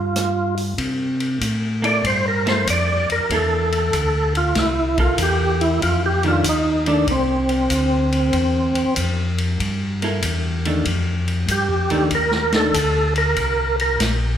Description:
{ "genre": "soul jazz organ trio", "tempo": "95 BPM", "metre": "4/4", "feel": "swing 67% on 8ths", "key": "C mixolydian", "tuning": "A4 = 440 Hz", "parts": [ { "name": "overdriven tonewheel organ", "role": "melody", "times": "0.0-14.0 s", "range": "C4 to D5", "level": "-19 LUFS", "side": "right 1 dB", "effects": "slow rotary speaker, chorus vibrato" }, { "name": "mellow tonewheel organ", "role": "bass", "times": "0.0-14.4 s", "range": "Bb1 to C3", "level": "-22 LUFS", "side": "equal", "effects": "slow rotary speaker" }, { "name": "vintage drum kit", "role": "drums", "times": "0.2-14.2 s", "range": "hi-hat, kick drum, ride cymbal, rim click, snare drum", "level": "-25 LUFS", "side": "left 2 dB", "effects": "none" }, { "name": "vintage hollow-body jazz guitar", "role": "accompaniment", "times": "1.8-12.7 s", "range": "Eb3 to A4", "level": "-25 LUFS", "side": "equal", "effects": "none" } ], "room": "moderate recital hall reverb, RT60 1.4 s", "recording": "recorded in a church or concert hall", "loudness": "-17 LUFS", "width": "side -9 dB against mid", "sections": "0.8-14.4 A section", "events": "tonewheel organ solo 0.8-14.4", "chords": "0.0 Fsus2/G; 0.8 C13; 5.8 F6; 8.3 C6; 10.9 F13; 13.4 C7(no3)" }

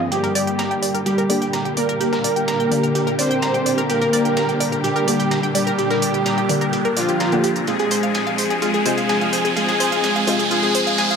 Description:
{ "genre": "melodic techno", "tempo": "127 BPM", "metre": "4/4", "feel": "straight", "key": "G phrygian", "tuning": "A4 = 440 Hz", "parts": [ { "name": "analog synth brass", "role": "melody", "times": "0.0-11.2 s", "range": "F3 to C5", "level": "-21 LUFS", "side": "equal", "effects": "chorus, digital delay" }, { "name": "muted studio string section", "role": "sustained chords", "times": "0.0-11.2 s", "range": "D3 to Ab5", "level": "-26 LUFS", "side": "equal", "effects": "low-pass filter" }, { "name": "analog pluck", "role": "arpeggios", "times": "0.0-11.2 s", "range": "F4 to Bb5", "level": "-24 LUFS", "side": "equal", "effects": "chorus, phaser, digital delay" }, { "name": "synth brass stab", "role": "stabs", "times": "0.0-11.2 s", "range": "C3 to Ab4", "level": "-27 LUFS", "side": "left 1 dB", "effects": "chorus, phaser, cassette tape, digital delay" }, { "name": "swarming drone", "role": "drone", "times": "0.0-11.2 s", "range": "G2 to D4", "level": "-30 LUFS", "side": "right 1 dB", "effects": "built-in reverb" }, { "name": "noise sweep and riser", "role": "sound effects", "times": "0.0-11.2 s", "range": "none", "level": "-27 LUFS", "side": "right 2 dB", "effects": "none" }, { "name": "dusty soul sampler-style drum kit", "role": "drums", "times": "0.1-11.1 s", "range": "hi-hat, snare drum", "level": "-32 LUFS", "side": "right 1 dB", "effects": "high-pass filter on hats, high-pass filter on snare, high-pass filter on room" }, { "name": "electronic hi-hat", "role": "drums", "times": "0.1-11.2 s", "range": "none", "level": "-27 LUFS", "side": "right 2 dB", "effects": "none" } ], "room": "light reverb, digital ambience", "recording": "high-pass filter", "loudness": "-17 LUFS", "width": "side -6 dB against mid", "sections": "0.1-11.2 A section", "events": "build-up 0.1-11.2; riser 0.1-11.2; filter sweep on synth stab 0.1-11.2; filter sweep on string section 0.1-11.2; filter sweep 0.1-11.2", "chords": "0.1 Gm; 7.7 Fm" }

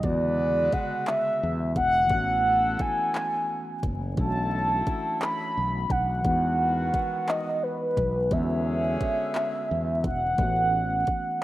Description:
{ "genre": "slow six-eight R&B", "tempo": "58 BPM (dotted quarters)", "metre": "6/8", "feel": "straight", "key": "E major", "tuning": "A4 = 439 Hz", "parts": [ { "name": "mellow horn-like synth lead", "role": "melody", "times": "0.0-11.4 s", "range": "B4 to B5", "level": "-25 LUFS", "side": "equal", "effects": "chorus" }, { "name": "mellow tine electric piano", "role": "accompaniment", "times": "0.0-11.4 s", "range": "C#3 to F#4", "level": "-34 LUFS", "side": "equal", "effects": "fast stereo tremolo" }, { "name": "clear horn section", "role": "stabs", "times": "0.0-10.0 s", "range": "D3 to B4", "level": "-38 LUFS", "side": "left 2 dB", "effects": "none" }, { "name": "fretless electric bass", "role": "bass", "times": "0.0-11.1 s", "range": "E1 to E2", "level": "-28 LUFS", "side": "equal", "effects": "none" }, { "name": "smooth R&B drum kit", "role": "drums", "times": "0.0-11.2 s", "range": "handclaps, hi-hat, kick drum", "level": "-31 LUFS", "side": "equal", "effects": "none" } ], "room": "moderate lush hall reverb, RT60 2.2 s", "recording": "rough home demo mix, vinyl crackle", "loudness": "-23 LUFS", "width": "side -15 dB against mid", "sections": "0.0-10.4 A section; 10.4-11.4 A section", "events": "none", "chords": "0.0 E13; 2.1 A69; 4.2 Bm11; 6.2 Emaj9; 8.3 E13; 10.4 A69" }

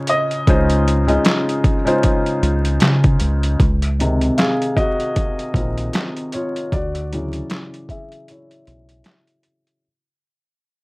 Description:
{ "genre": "lo-fi hip hop", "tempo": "77 BPM", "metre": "4/4", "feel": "swing 57% on 16ths", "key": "Db major", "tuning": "A4 = 440 Hz", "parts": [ { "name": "clear upright piano", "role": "melody", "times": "0.0-2.8 s", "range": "Db5 to Eb5", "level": "-23 LUFS", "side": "equal", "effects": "low-pass filter" }, { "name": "felt-muted upright piano", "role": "accompaniment", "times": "0.0-9.8 s", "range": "C3 to F5", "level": "-20 LUFS", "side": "left 1 dB", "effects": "low-pass filter" }, { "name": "boom bap sampler-style drum kit", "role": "drums", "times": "0.1-9.8 s", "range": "handclaps, hi-hat, kick drum, snare drum", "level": "-18 LUFS", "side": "equal", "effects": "overdrive" }, { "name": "deep dub fingered electric bass", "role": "bass", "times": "0.5-9.0 s", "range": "Bb1 to Db3", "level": "-18 LUFS", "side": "equal", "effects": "none" } ], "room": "light reverb", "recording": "worn, warbling old tape, cassette tape, vinyl crackle, warbly pitch drift", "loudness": "-15 LUFS", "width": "side -26 dB against mid", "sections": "0.0-3.6 A section; 3.6-9.8 B section", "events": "fade-out 3.6-9.8; felt piano solo 3.6-9.8; filter sweep on felt piano 3.6-9.8; break 8.3-9.8", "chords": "0.0 Dbmaj9; 6.7 Dmaj9" }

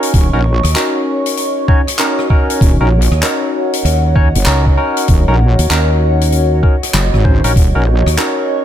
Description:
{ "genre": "glitch hop", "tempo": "97 BPM", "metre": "4/4", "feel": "swing 64% on 16ths", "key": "Eb minor", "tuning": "A4 = 440 Hz", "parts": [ { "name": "dark analog pad", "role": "sustained chords", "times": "0.0-8.6 s", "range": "Gb4 to Db6", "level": "-23 LUFS", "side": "equal", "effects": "chorus, phaser, sidechain pumping" }, { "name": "barky tine electric piano", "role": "stabs", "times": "0.0-8.6 s", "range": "Db4 to Db5", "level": "-18 LUFS", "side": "equal", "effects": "overdrive, phaser, sidechain pumping, dub echo" }, { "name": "big rock drum kit", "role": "drums", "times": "0.0-8.3 s", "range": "handclaps, hi-hat, rim click", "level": "-20 LUFS", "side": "left 1 dB", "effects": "none" }, { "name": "warbly tape-like pad", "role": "texture", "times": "0.0-8.6 s", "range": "Db5", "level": "-22 LUFS", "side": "equal", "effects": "chorus, built-in reverb, sidechain pumping" }, { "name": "wobble bass", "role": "bass", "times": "0.1-8.0 s", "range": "Eb1 to Bb1", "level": "-12 LUFS", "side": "equal", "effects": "chorus" }, { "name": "electronic kick drum", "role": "drums", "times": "0.1-7.7 s", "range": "none", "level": "-11 LUFS", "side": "equal", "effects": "none" }, { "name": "fingered electric bass", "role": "bass", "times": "0.6-8.2 s", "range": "Bb1 to Eb2", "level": "-13 LUFS", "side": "equal", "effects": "tube saturation" } ], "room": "small room ambience", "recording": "none", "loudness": "-10 LUFS", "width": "side -10 dB against mid", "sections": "0.0-8.6 A section", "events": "none", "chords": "0.0 Ebm7" }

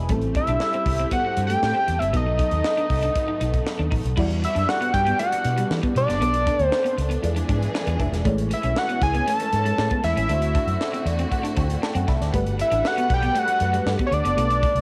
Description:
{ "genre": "polished 1980s jazz-funk pop", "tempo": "118 BPM", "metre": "4/4", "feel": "straight", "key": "E minor", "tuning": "A4 = 440 Hz", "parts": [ { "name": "FM electric piano with soft pad layer", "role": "accompaniment", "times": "0.0-14.8 s", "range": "F#3 to B5", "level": "-33 LUFS", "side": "equal", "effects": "phaser, analog chorus" }, { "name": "warm studio string section", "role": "sustained chords", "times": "0.0-14.8 s", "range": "D3 to F#5", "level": "-36 LUFS", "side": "equal", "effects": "none" }, { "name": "vintage muted fingered electric bass", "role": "bass", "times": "0.0-14.8 s", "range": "E1 to E3", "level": "-27 LUFS", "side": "equal", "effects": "none" }, { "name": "electric guitar at the edge of break-up", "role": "riff", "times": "0.1-14.7 s", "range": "G3 to E4", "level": "-34 LUFS", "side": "equal", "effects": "lush chorus" }, { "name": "crisp fusion drum kit", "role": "drums", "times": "0.1-14.8 s", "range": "crash cymbal, hi-hat, kick drum, snare drum", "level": "-30 LUFS", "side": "equal", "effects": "cassette tape" }, { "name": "fat analog lead", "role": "melody", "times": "0.4-14.8 s", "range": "C#5 to A5", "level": "-25 LUFS", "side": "equal", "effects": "phaser" } ], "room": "moderate spring reverb, RT60 1.6 s", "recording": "home recording on cassette", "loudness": "-22 LUFS", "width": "mono", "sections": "0.0-4.2 A section; 4.2-14.8 B section", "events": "FM electric piano fill 7.5-8.3, 10.8-12.3", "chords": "0.1 Am7; 2.1 B7; 4.2 Em9; 6.2 Bm9; 7.2 E7b9; 8.3 Amaj7; 10.3 D7; 12.3 Gmaj9" }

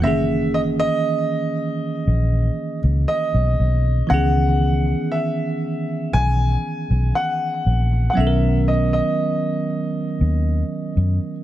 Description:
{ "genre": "contemporary R&B", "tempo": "59 BPM", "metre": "4/4", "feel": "straight", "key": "C# dorian", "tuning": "A4 = 440 Hz", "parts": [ { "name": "warm grand piano", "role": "melody", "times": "0.0-10.9 s", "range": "D#5 to G#5", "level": "-24 LUFS", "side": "equal", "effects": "ping-pong delay" }, { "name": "bell-like tine electric piano", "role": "accompaniment", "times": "0.0-11.4 s", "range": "D#3 to A#4", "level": "-23 LUFS", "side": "right 2 dB", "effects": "none" }, { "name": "vintage muted fingered electric bass", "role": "bass", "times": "0.0-11.2 s", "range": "F#1 to F#2", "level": "-18 LUFS", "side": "equal", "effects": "none" } ], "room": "small room ambience", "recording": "none", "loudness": "-18 LUFS", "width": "side -13 dB against mid", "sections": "0.0-11.4 A section", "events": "none", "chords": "0.0 F#13; 4.1 C#m9; 8.2 Bmaj7" }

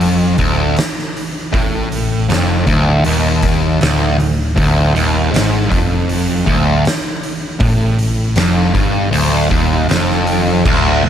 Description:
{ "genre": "stoner and doom metal", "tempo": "79 BPM", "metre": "4/4", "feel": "straight", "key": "D minor", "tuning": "A4 = 444 Hz", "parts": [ { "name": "fuzz guitar", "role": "riff", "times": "0.0-11.1 s", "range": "D2 to A2", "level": "-14 LUFS", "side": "equal", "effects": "distortion" }, { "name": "hollow-body short-scale picked electric bass", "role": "bass", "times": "0.0-11.1 s", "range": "D1 to A1", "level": "-19 LUFS", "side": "equal", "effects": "overdrive" }, { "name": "oversized low-tuned drum kit", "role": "drums", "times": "0.0-10.8 s", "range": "crash cymbal, hi-hat, kick drum, snare drum", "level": "-19 LUFS", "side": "equal", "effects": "none" } ], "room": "light reverb, small room ambience", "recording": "none", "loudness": "-12 LUFS", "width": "side -9 dB against mid", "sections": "0.0-10.7 A section", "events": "none", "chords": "0.0 Dm" }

